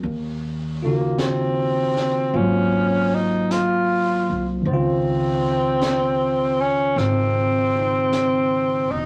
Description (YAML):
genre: jazz ballad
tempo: 52 BPM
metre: 4/4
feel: swing 68% on 8ths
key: Db major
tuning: A4 = 440 Hz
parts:
  - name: barky tine electric piano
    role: accompaniment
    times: 0.0-9.1 s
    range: Db3 to C5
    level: -25 LUFS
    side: equal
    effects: none
  - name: upright bass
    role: bass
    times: 0.0-9.1 s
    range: Fb1 to Eb2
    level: -31 LUFS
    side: equal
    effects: none
  - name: jazz brush drum kit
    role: drums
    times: 0.0-9.1 s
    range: brushed snare drum, hi-hat, snare drum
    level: -36 LUFS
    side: equal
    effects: none
  - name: breathy tenor saxophone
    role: melody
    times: 0.8-9.1 s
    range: Bb3 to F4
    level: -23 LUFS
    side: equal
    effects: none
room: moderate studio reverb, RT60 0.8 s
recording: vinyl crackle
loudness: -21 LUFS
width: mono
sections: 0.0-9.1 A section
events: none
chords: 0.0 Ebm9; 2.3 Ab13; 4.7 Dbmaj9